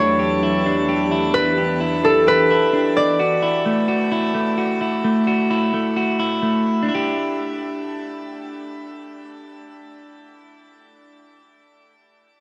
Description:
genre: hip hop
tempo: 130 BPM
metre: 4/4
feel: half-time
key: E dorian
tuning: A4 = 442 Hz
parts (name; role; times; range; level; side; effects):
- concert harp; melody; 0.0-4.8 s; A4 to D5; -22 LUFS; equal; tape echo
- ethereal airy pad; sustained chords; 0.0-1.3 s; E3 to G4; -28 LUFS; equal; ensemble chorus, built-in reverb, phaser
- clean electric guitar; arpeggios; 0.0-11.5 s; A3 to G4; -23 LUFS; equal; tape echo
room: moderate shimmer reverb, RT60 8.0 s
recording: none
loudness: -19 LUFS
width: mono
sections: 0.0-6.9 A section; 6.9-10.6 B section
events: none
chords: 0.0 Em7; 3.2 F#m7; 6.9 Em7

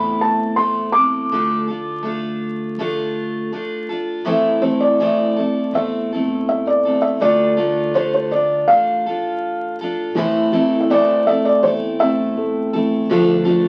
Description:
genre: acoustic folk duo or small band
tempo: 81 BPM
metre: 4/4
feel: straight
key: A minor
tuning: A4 = 440 Hz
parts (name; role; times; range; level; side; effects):
- felt-muted upright piano; melody; 0.0-12.7 s; C5 to D6; -20 LUFS; equal; none
- picked steel-string acoustic guitar; accompaniment; 0.0-13.7 s; A2 to A4; -22 LUFS; equal; none
- upright bass; bass; 0.0-13.7 s; A1 to E2; -38 LUFS; equal; none
- felt-muted upright piano; arpeggios; 10.2-13.7 s; E3 to C4; -23 LUFS; equal; none
room: wet studio reverb, RT60 0.6 s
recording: very old 78 rpm record, vinyl crackle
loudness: -18 LUFS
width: mono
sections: 0.0-4.3 A section; 4.3-13.7 B section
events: felt piano solo 4.3-13.7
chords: 0.0 Am; 1.3 Dm; 4.3 Am; 7.2 Dm; 10.2 Am; 13.1 Dm

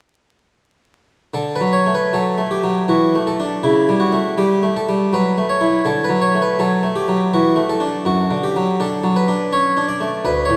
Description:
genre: classical, baroque-style suite movement for harpsichord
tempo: 81 BPM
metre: 3/4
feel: rubato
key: D major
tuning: A4 = 440 Hz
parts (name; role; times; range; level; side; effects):
- harpsichord; solo; 1.3-10.6 s; D2 to D5; -17 LUFS; equal; none
room: wet church reverb, RT60 3.5 s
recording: vinyl crackle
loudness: -18 LUFS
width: mono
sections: 1.3-10.6 A section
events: none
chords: 1.3 D; 3.6 A7/C#; 5.9 D; 8.1 D/F#

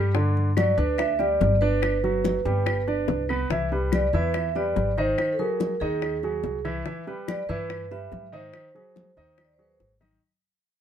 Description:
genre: Afro-Cuban jazz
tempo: 143 BPM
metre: 4/4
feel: straight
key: G major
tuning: A4 = 443 Hz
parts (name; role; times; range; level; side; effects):
- warm baby grand piano; accompaniment; 0.0-10.2 s; D3 to E5; -29 LUFS; right 1 dB; none
- upright bass; bass; 0.0-10.2 s; G1 to Ab2; -27 LUFS; left 1 dB; none
- bongos; percussion; 0.1-10.1 s; none; -32 LUFS; left 9 dB; none
- congas; percussion; 0.2-10.1 s; none; -32 LUFS; left 3 dB; none
- vibraphone with medium mallets; melody; 0.6-9.8 s; Ab4 to E5; -26 LUFS; right 2 dB; none
- claves; percussion; 0.6-10.2 s; none; -37 LUFS; left 1 dB; none
room: light reverb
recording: minimal, uncompressed stereo recording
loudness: -22 LUFS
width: side -9 dB against mid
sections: 0.0-3.5 A section; 3.5-10.2 B section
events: fade-out 3.5-10.2; drum fill 9.8-10.2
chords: 0.1 Gmaj7; 2.7 G; 3.5 Cmaj9; 5.2 Ab9; 6.9 G6; 8.5 Ab7

